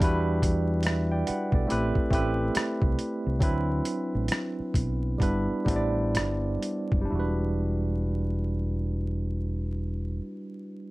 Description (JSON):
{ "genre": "R&B, neo-soul", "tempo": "61-72 BPM", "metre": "4/4", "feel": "swing 64% on 16ths", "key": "E minor", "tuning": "A4 = 441 Hz", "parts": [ { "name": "barky tine electric piano", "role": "accompaniment", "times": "0.0-10.9 s", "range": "F#3 to G5", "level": "-29 LUFS", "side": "right 1 dB", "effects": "medium stereo tremolo" }, { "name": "fingered electric bass", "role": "bass", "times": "0.0-10.2 s", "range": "E1 to E2", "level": "-28 LUFS", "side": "equal", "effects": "none" }, { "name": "boom bap sampler-style drum kit", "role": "drums", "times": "0.0-7.1 s", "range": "hi-hat, kick drum, rim click", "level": "-27 LUFS", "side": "equal", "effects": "none" } ], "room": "light reverb", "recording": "dark, warm production, vinyl crackle", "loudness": "-25 LUFS", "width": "side -20 dB against mid", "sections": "0.0-7.1 A section; 7.1-10.9 B section", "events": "slowing down 0.0-7.1", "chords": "0.0 Em9; 1.7 Am9; 3.4 D13; 5.2 G6; 7.1 Em9" }